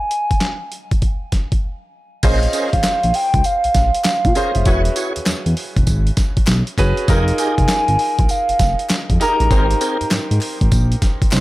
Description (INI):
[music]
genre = R&B, new jack swing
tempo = 99 BPM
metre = 4/4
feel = swing 65% on 16ths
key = unclear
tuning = A4 = 440 Hz
[part]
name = hollow clarinet-like synth lead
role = melody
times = 0.0-10.1 s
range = Eb5 to Bb5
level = -20 LUFS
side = equal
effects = chorus, tape echo
[part]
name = boom bap sampler-style drum kit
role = drums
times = 0.1-11.4 s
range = crash cymbal, handclaps, hi-hat, kick drum, snare drum, tambourine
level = -18 LUFS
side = equal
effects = overdrive
[part]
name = clear grand piano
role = accompaniment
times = 2.2-11.4 s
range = Db4 to C5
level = -24 LUFS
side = right 1 dB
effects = none
[part]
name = tonewheel organ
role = stabs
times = 2.2-10.0 s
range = C4 to C#5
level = -27 LUFS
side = equal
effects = overdrive, chorus vibrato, slow rotary speaker, tape echo
[part]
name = smooth gliding synth bass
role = bass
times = 2.2-11.4 s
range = E1 to Bb2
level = -18 LUFS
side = equal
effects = none
[part]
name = group handclap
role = percussion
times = 2.8-11.4 s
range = none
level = -35 LUFS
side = left 7 dB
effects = none
[sound]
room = digital ambience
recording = none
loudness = -14 LUFS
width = side -18 dB against mid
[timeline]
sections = 0.0-2.2 A section; 2.2-11.4 B section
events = break 1.6-2.2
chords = 0.0 N.C.; 2.2 Bbm9; 4.7 E69; 7.1 Fm11; 9.5 Abmaj9